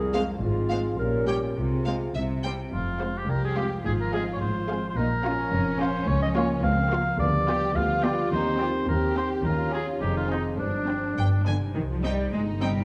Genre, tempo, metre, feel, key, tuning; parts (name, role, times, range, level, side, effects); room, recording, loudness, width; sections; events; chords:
cinematic, playful, whimsical film cue; 106 BPM; 2/4; straight; F minor, C minor from 7.2 s; A4 = 441 Hz
mellow clarinet; second line; 0.0-2.1 s; F4 to Bb4; -32 LUFS; equal
concert harp; arpeggios; 0.0-12.8 s; F2 to C6; -35 LUFS; equal
rich studio cello section; bass; 0.0-12.8 s; C2 to Ab3; -33 LUFS; equal
warm studio violin section; melody; 0.1-12.7 s; E5 to Bb5; -40 LUFS; equal
warm studio violin section; second line; 0.1-12.8 s; Bb3 to Db5; -36 LUFS; equal
rich studio viola section; accompaniment; 0.1-12.7 s; G3 to C5; -36 LUFS; equal
dark French horn section; sustained chords; 0.1-11.5 s; Bb3 to C5; -35 LUFS; equal
warm studio double bass section; bass; 0.4-12.8 s; F1 to Eb2; -33 LUFS; equal
warm oboe; second line; 2.7-11.4 s; D4 to F5; -32 LUFS; equal
moderate scoring stage reverb, RT60 1.8 s; dark, warm production; -26 LUFS; mono
0.0-2.7 A section; 2.7-11.8 B section; 11.8-12.8 C section
0.4 Fm/Ab; 1.0 Gdim/Bb; 1.6 Fm/C; 2.2 C; 2.7 Fm; 3.9 Fm/Ab; 5.0 Bbm; 6.1 Bbm/Db; 7.2 G7/D; 8.3 Cm/Eb; 9.4 Eb7; 10.0 Fm7; 10.6 Gsus4; 11.2 G; 11.8 Cm